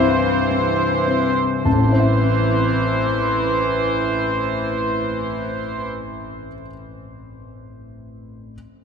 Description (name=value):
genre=cinematic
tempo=35 BPM (dotted quarters)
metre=6/8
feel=rubato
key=A minor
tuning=A4 = 440 Hz
part: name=warm grand piano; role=accompaniment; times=0.0-8.6 s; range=A1 to A5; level=-21 LUFS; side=left 2 dB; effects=none
part: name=warm studio viola section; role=accompaniment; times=0.0-5.8 s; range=E3 to C5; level=-21 LUFS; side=right 2 dB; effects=none
room=wet cathedral reverb, RT60 5.1 s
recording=in a vast, echoing space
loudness=-17 LUFS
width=side -6 dB against mid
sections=0.0-1.7 A section; 1.7-5.1 B section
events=slowing down 0.0-1.7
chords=0.0 C; 1.7 Am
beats=| 1.65 3.37